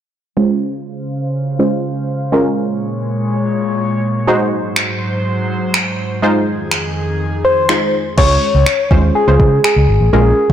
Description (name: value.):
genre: dance-pop.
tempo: 123 BPM.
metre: 4/4.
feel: straight.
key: unclear.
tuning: A4 = 440 Hz.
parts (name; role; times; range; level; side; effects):
glassy wavetable pluck; accompaniment; 0.4-10.5 s; Ab3 to Db5; -17 LUFS; right 1 dB; chorus, sidechain pumping, low-pass filter.
airy breathy pad; sustained chords; 0.7-8.2 s; F2 to F5; -19 LUFS; equal; chorus, sidechain pumping, low-pass filter.
smooth R&B drum kit; drums; 4.8-10.5 s; crash cymbal, finger snaps, kick drum; -17 LUFS; equal; soft clipping on snare.
soft struck synth lead; melody; 7.4-10.5 s; Ab4 to Db5; -14 LUFS; left 2 dB; chorus.
vintage muted fingered electric bass; bass; 8.2-10.5 s; Ab1 to Db3; -12 LUFS; equal; sidechain pumping.
room: light reverb, digital ambience.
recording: blown-out, overdriven recording, overdrive.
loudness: -13 LUFS.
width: side -10 dB against mid.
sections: 0.4-8.2 A section; 8.2-10.5 B section.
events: filter sweep 0.4-8.2.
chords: 0.4 Dbmaj7; 2.3 Bbm7; 4.3 Ab7; 6.2 Fm7; 8.2 Dbmaj7.